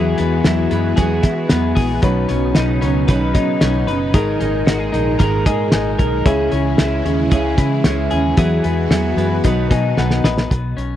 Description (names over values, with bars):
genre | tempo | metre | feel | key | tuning
jangly indie pop | 113 BPM | 4/4 | straight | B major | A4 = 440 Hz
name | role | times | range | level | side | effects
fingerpicked steel-string acoustic guitar | accompaniment | 0.0-10.5 s | G#2 to B4 | -21 LUFS | right 6 dB | none
reed electric piano | accompaniment | 0.0-10.5 s | D#4 to G#5 | -26 LUFS | left 8 dB | none
string machine, violas | sustained chords | 0.0-10.5 s | A#2 to F#4 | -25 LUFS | equal | ensemble chorus
twelve-string electric guitar | arpeggios | 0.0-11.0 s | G#2 to B4 | -21 LUFS | left 6 dB | tape echo
vintage muted fingered electric bass | bass | 0.0-11.0 s | F#1 to E3 | -21 LUFS | equal | none
cloth-damped thuddy drum kit | drums | 0.2-10.9 s | hi-hat, kick drum, snare drum | -16 LUFS | equal | none
room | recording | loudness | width
little or no reverb | dry, close 1970s-style studio recording | -14 LUFS | side -11 dB against mid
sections
0.0-10.5 A section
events
reed electric piano fill 5.2-6.3, 9.4-10.5; drum fill 10.0-10.5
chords
0.0 Eadd9; 2.0 Badd9; 4.1 G#sus2; 6.3 C#m; 8.4 Eadd9; 9.4 B